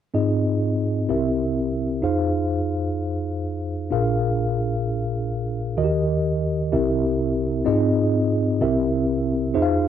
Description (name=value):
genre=gospel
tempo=64 BPM (dotted quarters)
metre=6/8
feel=straight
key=Ab major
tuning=A4 = 437 Hz
part: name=mellow tine electric piano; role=accompaniment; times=0.1-9.9 s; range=Bb1 to F5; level=-20 LUFS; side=equal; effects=medium stereo tremolo
room=moderate echo chamber reverb, RT60 1.8 s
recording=worn, warbling old tape, cassette tape, warbly pitch drift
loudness=-20 LUFS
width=side -9 dB against mid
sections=0.1-7.7 A section; 7.7-9.9 B section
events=none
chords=0.1 Ab6; 1.1 C7; 2.0 Fm7; 3.9 Bb7; 5.8 Eb; 6.7 C7; 7.7 Ab6; 8.6 C7